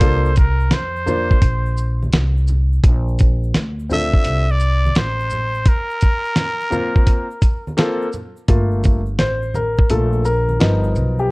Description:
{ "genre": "hip hop, jazz-hop", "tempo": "85 BPM", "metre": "4/4", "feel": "swing 66% on 16ths", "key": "G minor", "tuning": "A4 = 440 Hz", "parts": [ { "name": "trumpet with straight mute", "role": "melody", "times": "0.0-7.8 s", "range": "Bb4 to E5", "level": "-22 LUFS", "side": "equal", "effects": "none" }, { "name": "warm grand piano", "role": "accompaniment", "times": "0.0-11.3 s", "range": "F3 to C5", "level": "-21 LUFS", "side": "left 1 dB", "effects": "none" }, { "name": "upright bass", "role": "bass", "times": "0.0-11.3 s", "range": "G1 to D2", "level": "-18 LUFS", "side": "equal", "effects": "none" }, { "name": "dusty soul sampler-style drum kit", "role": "drums", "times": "0.0-11.2 s", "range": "hi-hat, kick drum, shaker, snare drum", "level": "-15 LUFS", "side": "equal", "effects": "none" }, { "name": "egg shaker and congas", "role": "percussion", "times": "0.0-11.3 s", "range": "none", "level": "-30 LUFS", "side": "right 1 dB", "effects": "none" } ], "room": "studio ambience", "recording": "worn, warbling old tape, cassette tape, warbly pitch drift", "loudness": "-15 LUFS", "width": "side -25 dB against mid", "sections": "0.0-8.5 A section; 8.5-11.3 B section", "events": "grand piano solo 8.5-11.3", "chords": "0.0 C9sus4; 2.8 Bbmaj9; 5.7 Bbsus2; 8.5 Gm9; 10.6 G7alt", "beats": "| 0.01 0.72 1.43 2.13 | 2.84 3.54 4.25 4.96 | 5.66 6.37 7.07 7.78 | 8.49 9.19 9.90 10.60 | 11.31" }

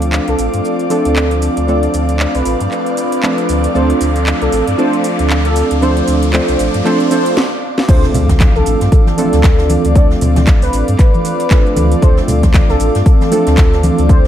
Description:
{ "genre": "deep house", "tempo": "116 BPM", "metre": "4/4", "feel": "swing 58% on 16ths", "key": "D minor", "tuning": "A4 = 440 Hz", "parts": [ { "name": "airy breathy pad", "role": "sustained chords", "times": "0.0-14.3 s", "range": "C4 to D6", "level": "-23 LUFS", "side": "equal", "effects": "chorus, sidechain pumping" }, { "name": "warm analog keys", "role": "stabs", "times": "0.0-14.3 s", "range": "F3 to A4", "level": "-17 LUFS", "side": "right 1 dB", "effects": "chorus, sidechain pumping, digital delay" }, { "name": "sub bass with octave", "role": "bass", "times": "0.0-14.3 s", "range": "A1 to G2", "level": "-15 LUFS", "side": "equal", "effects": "sidechain pumping" }, { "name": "house drum kit", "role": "drums", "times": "0.0-14.3 s", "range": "crash cymbal, handclaps, hi-hat, shaker, snare drum", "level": "-22 LUFS", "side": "equal", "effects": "none" }, { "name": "riser, swell and impact", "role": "sound effects", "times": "0.0-10.0 s", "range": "none", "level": "-26 LUFS", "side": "equal", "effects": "none" }, { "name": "airy breathy pad", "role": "texture", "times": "0.0-14.3 s", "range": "C4 to D5", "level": "-24 LUFS", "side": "left 1 dB", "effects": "chorus, phaser, sidechain pumping" }, { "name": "soft string machine", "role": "texture", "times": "0.1-7.4 s", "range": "D5 to D6", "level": "-28 LUFS", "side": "equal", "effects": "ensemble chorus, sidechain pumping" }, { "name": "warm velvety synth lead", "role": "melody", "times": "0.3-14.3 s", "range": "A4 to D5", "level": "-20 LUFS", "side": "equal", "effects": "chorus, dub echo" }, { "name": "electronic kick drum", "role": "drums", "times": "7.9-14.2 s", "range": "none", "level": "-9 LUFS", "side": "equal", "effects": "none" }, { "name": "jazz brush drum kit", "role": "drums", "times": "7.9-14.3 s", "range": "hi-hat, snare drum", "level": "-32 LUFS", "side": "right 1 dB", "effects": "sidechain pumping on hats, high-pass filter on hats, high-pass filter on snare, high-pass filter on room" }, { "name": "congas", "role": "percussion", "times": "8.1-14.0 s", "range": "none", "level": "-20 LUFS", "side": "right 2 dB", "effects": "sidechain pumping on perc" } ], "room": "light reverb, digital ambience", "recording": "none", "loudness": "-10 LUFS", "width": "side -10 dB against mid", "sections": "0.0-7.9 A section; 7.9-14.3 B section", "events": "build-up 0.0-7.9; riser 0.0-7.4; swell 6.9-7.9; break 7.4-7.9; drum fill 7.4-7.9; drop 7.9-14.3; impact 7.9-10.0", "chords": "0.0 Dm7", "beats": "0.13 0.65 1.16 | 1.68 2.20 2.71 3.23 | 3.75 4.27 4.78 5.30 | 5.82 6.33 6.85 7.37 | 7.89 8.40 8.92 9.44 | 9.96 10.47 10.99 11.51 | 12.02 12.54 13.06 13.58 | 14.09" }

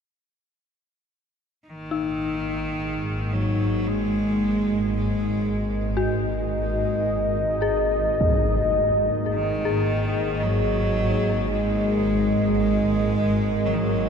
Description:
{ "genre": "dark ambient drone", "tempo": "55 BPM", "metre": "4/4", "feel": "straight", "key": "unclear", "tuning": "A4 = 440 Hz", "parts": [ { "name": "dark analog pad", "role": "sustained chords", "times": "1.6-14.1 s", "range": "A#3 to D#5", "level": "-26 LUFS", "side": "equal", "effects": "chorus" }, { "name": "bright cello", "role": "melody", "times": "1.7-14.1 s", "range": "D#3 to G#3", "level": "-26 LUFS", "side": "right 1 dB", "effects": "ping-pong delay" }, { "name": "swarming drone", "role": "drone", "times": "2.0-14.1 s", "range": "G#1 to G#2", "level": "-26 LUFS", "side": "equal", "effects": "built-in reverb" }, { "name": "dark detuned synth bell", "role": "arpeggios", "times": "1.9-14.1 s", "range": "D#4 to G#4", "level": "-30 LUFS", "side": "left 5 dB", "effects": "chorus, ping-pong delay" }, { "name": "impact", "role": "percussion", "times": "8.2-8.4 s", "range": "none", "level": "-28 LUFS", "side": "right 1 dB", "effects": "low-pass filter on sfx" } ], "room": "wet huge ambient reverb, RT60 8.6 s", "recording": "none", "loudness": "-21 LUFS", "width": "side -6 dB against mid", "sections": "1.7-14.1 A section", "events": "none", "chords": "1.7 G#sus2", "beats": "| 1.67 2.76 3.85 4.94 | 6.03 7.12 8.21 9.30 | 10.39 11.49 12.58 13.67" }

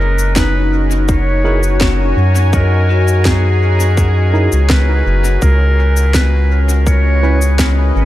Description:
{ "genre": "ambient dub", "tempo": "83 BPM", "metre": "4/4", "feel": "straight", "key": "unclear", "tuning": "A4 = 439 Hz", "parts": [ { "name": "bright clarinet", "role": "melody", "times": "0.0-7.9 s", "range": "G#4 to C#5", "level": "-20 LUFS", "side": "equal", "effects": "dub echo" }, { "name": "deep dark ambient pad", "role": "sustained chords", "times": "0.0-8.1 s", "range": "C#4 to A#5", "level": "-22 LUFS", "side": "left 2 dB", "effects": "chorus, built-in reverb" }, { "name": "vibraphone with hard mallets", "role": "arpeggios", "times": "0.0-5.4 s", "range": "C#4 to D#5", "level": "-24 LUFS", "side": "left 4 dB", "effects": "dub echo" }, { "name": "soft dub sub bass", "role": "bass", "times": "0.0-8.1 s", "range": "F#1 to F#2", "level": "-12 LUFS", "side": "equal", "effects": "none" }, { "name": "electronic cabasa and snare drum", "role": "drums", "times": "0.2-7.7 s", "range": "none", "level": "-21 LUFS", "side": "equal", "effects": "overdrive, dub echo" }, { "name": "electronic kick drum", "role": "drums", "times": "0.4-7.7 s", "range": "none", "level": "-16 LUFS", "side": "equal", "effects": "overdrive" }, { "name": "tine electric piano", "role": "stabs", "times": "1.4-7.4 s", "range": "C#4 to B4", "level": "-25 LUFS", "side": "right 3 dB", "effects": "none" } ], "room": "digital ambience", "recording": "none", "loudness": "-10 LUFS", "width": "side -14 dB against mid", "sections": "0.0-8.1 A section", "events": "none", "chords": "0.0 F#69; 5.4 C#7(no3)", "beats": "0.36 1.08 1.81 | 2.53 3.25 3.98 4.70 | 5.42 6.14 6.87 7.59" }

